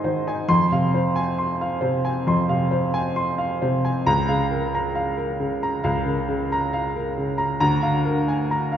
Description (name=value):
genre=classical, romantic character piece for solo piano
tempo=67 BPM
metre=4/4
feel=rubato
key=unclear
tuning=A4 = 440 Hz
part: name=warm upright piano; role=solo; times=0.0-8.8 s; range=Db2 to C6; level=-20 LUFS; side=equal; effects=none
room=wet recital hall reverb, RT60 1.5 s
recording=heard from further back in the room, nothing above 7.5 kHz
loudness=-20 LUFS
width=side -9 dB against mid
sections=0.0-8.8 A section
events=none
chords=0.5 Fm; 4.1 Bbm/Db; 7.6 Bb7/D